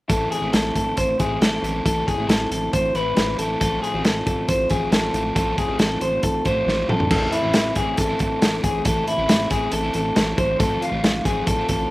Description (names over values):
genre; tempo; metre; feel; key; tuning
jangly indie pop; 137 BPM; 4/4; straight; A harmonic minor; A4 = 440 Hz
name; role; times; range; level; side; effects
crunchy overdriven guitar; accompaniment; 0.1-11.9 s; A2 to F4; -27 LUFS; right 2 dB; none
electric guitar through a small old amp; arpeggios; 0.1-11.9 s; E4 to C5; -23 LUFS; left 1 dB; slapback echo
chorused synth bass; bass; 0.1-11.9 s; A1; -28 LUFS; equal; none
raw garage drum kit; drums; 0.1-11.8 s; crash cymbal, hi-hat, kick drum, snare drum, toms; -22 LUFS; equal; none
room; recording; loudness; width
little or no reverb; recorded outdoors, with no room sound; -18 LUFS; side -18 dB against mid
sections
0.1-7.1 A section; 7.1-11.9 B section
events
drum fill 6.7-7.1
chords
0.1 Am; 3.6 F/A; 7.1 Am; 10.6 F/A